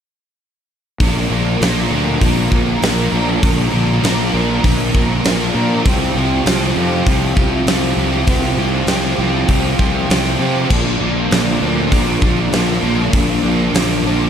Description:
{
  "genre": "rock, shoegaze and dream pop",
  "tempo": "99 BPM",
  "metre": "4/4",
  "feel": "straight",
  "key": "unclear",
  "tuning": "A4 = 442 Hz",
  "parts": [
    { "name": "overdriven electric guitar", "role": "riff", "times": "1.0-14.3 s", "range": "Bb2 to Bb4", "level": "-16 LUFS", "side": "equal", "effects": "ensemble chorus" },
    { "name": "fuzz fingered electric bass", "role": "bass", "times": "1.0-14.3 s", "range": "Bb1 to C3", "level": "-19 LUFS", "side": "equal", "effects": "overdrive" },
    { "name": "big rock drum kit", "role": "drums", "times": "1.0-13.9 s", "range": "crash cymbal, hi-hat, kick drum, snare drum", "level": "-18 LUFS", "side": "equal", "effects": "none" }
  ],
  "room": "light reverb, small room ambience",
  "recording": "none",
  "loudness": "-13 LUFS",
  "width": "side -8 dB against mid",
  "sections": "1.0-14.3 A section",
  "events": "none",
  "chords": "1.0 Bb; 5.9 Csus4; 10.7 Bb",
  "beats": "| 1.00 1.61 2.22 2.83 | 3.43 4.04 4.64 5.25 | 5.86 6.46 7.07 7.68 | 8.28 8.89 9.49 10.10 | 10.71 11.31 11.92 12.53 | 13.13 13.74"
}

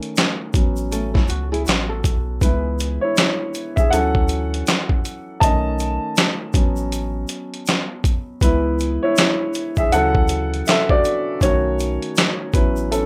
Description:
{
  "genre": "lo-fi hip hop",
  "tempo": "80 BPM",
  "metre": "4/4",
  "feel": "swing 61% on 16ths",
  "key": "A major",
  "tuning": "A4 = 440 Hz",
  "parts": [
    { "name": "dark upright piano", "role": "accompaniment", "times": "0.0-13.1 s", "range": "C#3 to A5", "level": "-24 LUFS", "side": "equal", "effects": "cassette tape, low-pass filter" },
    { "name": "boom bap sampler-style drum kit", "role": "drums", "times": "0.0-13.1 s", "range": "handclaps, hi-hat, kick drum, snare drum", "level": "-20 LUFS", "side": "equal", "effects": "none" },
    { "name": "tube shaker", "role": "percussion", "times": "0.2-13.1 s", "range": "none", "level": "-41 LUFS", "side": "equal", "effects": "none" },
    { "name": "soft dub sub bass", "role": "bass", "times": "0.5-13.1 s", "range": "A1 to D2", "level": "-26 LUFS", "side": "equal", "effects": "none" },
    { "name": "flamenco guitar", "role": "second line", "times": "0.9-2.4 s", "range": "A3 to A4", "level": "-30 LUFS", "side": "equal", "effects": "low-pass filter, analog delay" }
  ],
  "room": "little or no reverb",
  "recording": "rough home demo mix",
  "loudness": "-20 LUFS",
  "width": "mono",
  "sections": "0.0-13.1 A section",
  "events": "upright piano solo 0.0-13.1",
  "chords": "0.0 B7 (rootless); 0.5 A6; 2.4 C#m7; 3.9 Dmaj7; 5.4 B7; 6.5 A6; 8.4 C#m7; 9.9 Dmaj7; 11.4 B7; 12.5 A6",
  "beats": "0.16 0.91 1.66 | 2.41 3.16 3.91 4.66 | 5.41 6.16 6.91 7.66 | 8.41 9.16 9.91 10.66 | 11.41 12.16 12.91"
}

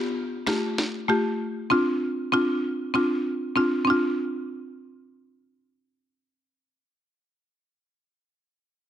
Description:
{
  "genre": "dancehall",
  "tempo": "97 BPM",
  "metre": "4/4",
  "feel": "straight",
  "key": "D minor",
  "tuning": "A4 = 444 Hz",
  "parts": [
    { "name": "buzzing marimba with medium mallets", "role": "accompaniment", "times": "0.5-7.8 s", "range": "A3 to G4", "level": "-23 LUFS", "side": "equal", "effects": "none" },
    { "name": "electronic snare drum and rim click", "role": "drums", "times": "0.5-0.9 s", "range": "none", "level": "-30 LUFS", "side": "equal", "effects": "overdrive, vintage 12-bit sampler grit" }
  ],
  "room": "light reverb, digital ambience",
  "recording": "dense, heavily limited modern master",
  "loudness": "-23 LUFS",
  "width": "side -10 dB against mid",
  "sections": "0.0-3.9 A section; 3.9-6.3 B section",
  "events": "none",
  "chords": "0.2 Fadd9; 1.4 Dm7",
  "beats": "0.16 0.78 | 1.40 2.02 2.64 3.25 | 3.87 4.49 5.11 5.73"
}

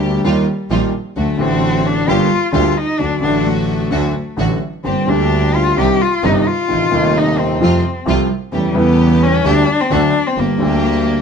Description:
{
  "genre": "tango",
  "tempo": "130 BPM",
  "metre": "4/4",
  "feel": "rubato",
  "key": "G minor",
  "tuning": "A4 = 440 Hz",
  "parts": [
    { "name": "warm cello", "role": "second line", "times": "0.0-11.2 s", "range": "G3 to G4", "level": "-17 LUFS", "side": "left 4 dB", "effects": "none" },
    { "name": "warm concert grand piano", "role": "accompaniment", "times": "0.0-11.2 s", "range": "Eb1 to G4", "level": "-17 LUFS", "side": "equal", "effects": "none" },
    { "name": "rich symphonic string section", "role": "stabs", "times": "0.0-11.2 s", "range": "G3 to G4", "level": "-25 LUFS", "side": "right 2 dB", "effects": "none" },
    { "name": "rich double bass", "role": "bass", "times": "0.0-11.2 s", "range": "G1 to F2", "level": "-20 LUFS", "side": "right 3 dB", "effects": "none" }
  ],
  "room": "moderate stone room reverb, RT60 1.0 s",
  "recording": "band playing live in one room, nothing above 10.9 kHz",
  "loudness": "-13 LUFS",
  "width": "side -6 dB against mid",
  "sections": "0.0-11.2 A section",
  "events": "cello solo 0.0-11.2",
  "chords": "0.2 Ebadd9; 1.2 D; 2.1 Gm; 3.0 D; 4.8 Gm; 5.8 Cmadd9; 6.7 Adim; 7.6 F; 8.5 A7/E; 9.4 Gm/D; 9.9 D; 10.4 Gm",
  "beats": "0.24 0.70 | 1.16 1.62 2.08 2.53 | 2.99 3.45 3.91 4.38 | 4.85 5.31 5.77 6.24 | 6.70 7.15 7.61 8.07 | 8.53 8.98 9.45 9.91 | 10.37 10.84"
}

